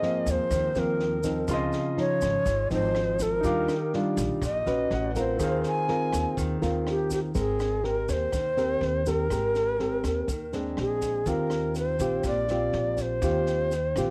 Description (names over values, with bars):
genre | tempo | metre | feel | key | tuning
bossa nova | 123 BPM | 4/4 | straight | unclear | A4 = 439 Hz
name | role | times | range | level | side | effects
breathy bright long shakuhachi | melody | 0.0-14.1 s | G4 to Ab5 | -30 LUFS | equal | cassette tape, plate reverb
nylon-string guitar | accompaniment | 0.0-14.1 s | Ab2 to Cb5 | -31 LUFS | equal | cassette tape, plate reverb
warm baby grand piano | accompaniment | 0.0-7.4 s | C4 to D6 | -37 LUFS | equal | cassette tape, plate reverb
compact cocktail drum kit | drums | 0.0-14.1 s | kick drum, rim click, snare drum | -39 LUFS | equal | cassette tape
upright bass | bass | 0.3-14.1 s | Ab1 to Eb2 | -35 LUFS | equal | none
tube shaker | percussion | 0.3-14.1 s | none | -46 LUFS | equal | none
room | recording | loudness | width
moderate studio reverb, RT60 0.7 s | home recording on cassette | -27 LUFS | mono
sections
0.0-7.4 A section; 7.4-14.1 B section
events
shakuhachi solo 0.0-7.4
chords
0.0 Ab69; 1.5 Dbmaj9; 3.4 Ebmaj9; 4.9 A69; 5.4 Ab69/Eb; 7.4 Abmaj9; 10.8 Bb9; 11.3 Eb69